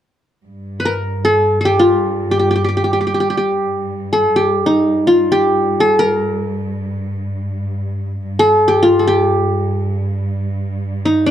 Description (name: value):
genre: Arabic maqam ensemble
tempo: free time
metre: none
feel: none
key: G maqam saba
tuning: A4 = 442 Hz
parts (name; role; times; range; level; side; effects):
- rich studio cello section; drone; 0.5-11.3 s; G2; -22 LUFS; right 1 dB; none
- qanun; melody; 0.8-11.3 s; D4 to B4; -13 LUFS; equal; none
room: light reverb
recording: dark, warm production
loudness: -14 LUFS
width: side -10 dB against mid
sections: 0.5-11.3 A section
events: none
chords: none